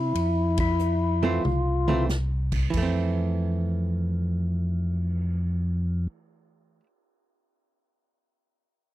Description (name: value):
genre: soul jazz organ trio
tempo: 93 BPM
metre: 4/4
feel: swing 66% on 8ths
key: F major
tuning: A4 = 440 Hz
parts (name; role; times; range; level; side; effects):
- percussive tonewheel organ; melody; 0.0-2.1 s; E4 to F4; -26 LUFS; left 2 dB; overdrive, slow rotary speaker
- mellow tonewheel organ; bass; 0.0-6.1 s; C2 to C3; -25 LUFS; equal; slow rotary speaker
- swinging big-band drum kit; drums; 0.2-5.2 s; crash cymbal, cymbal swell, hi-hat, kick drum, ride cymbal, snare drum, toms; -31 LUFS; equal; none
- archtop guitar, miked and amplified; accompaniment; 1.2-6.9 s; E3 to C4; -30 LUFS; right 5 dB; none
room: little or no reverb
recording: dry, close 1970s-style studio recording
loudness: -23 LUFS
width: side -14 dB against mid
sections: 0.0-2.7 A section; 2.7-5.3 B section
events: band accent 0.5-0.8; drum fill 0.8-2.1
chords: 0.0 Fmaj7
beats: | 0.14 0.79 1.44 2.08 | 2.73 3.37 4.02 4.67